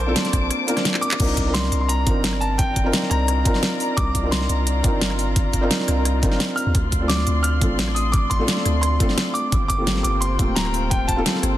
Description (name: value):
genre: liquid drum and bass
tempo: 173 BPM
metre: 4/4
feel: straight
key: C dorian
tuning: A4 = 439 Hz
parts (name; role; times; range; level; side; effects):
- warm baby grand piano; melody; 0.0-11.6 s; C5 to F6; -27 LUFS; equal; dub echo
- muted chamber string section; sustained chords; 0.0-11.6 s; C4 to D6; -30 LUFS; left 3 dB; none
- long sustained 808-style bass; bass; 0.0-11.6 s; D1 to Eb2; -23 LUFS; equal; none
- felt-muted upright piano; accompaniment; 0.1-11.6 s; A3 to Bb4; -25 LUFS; equal; dub echo
- pop drum kit; drums; 0.2-11.5 s; crash cymbal, handclaps, hi-hat, rim click, snare drum; -24 LUFS; equal; none
- electronic kick drum; drums; 0.3-11.2 s; none; -21 LUFS; equal; overdrive
room: light reverb, small room ambience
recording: dense, heavily limited modern master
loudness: -18 LUFS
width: side -13 dB against mid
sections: 0.0-1.2 A section; 1.2-11.6 A section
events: drop 0.0-1.2, 1.2-11.6; drum fill 0.9; band accent 1.1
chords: 0.0 Bbmaj9; 1.2 Cm11; 6.7 Dm7; 9.5 Gm11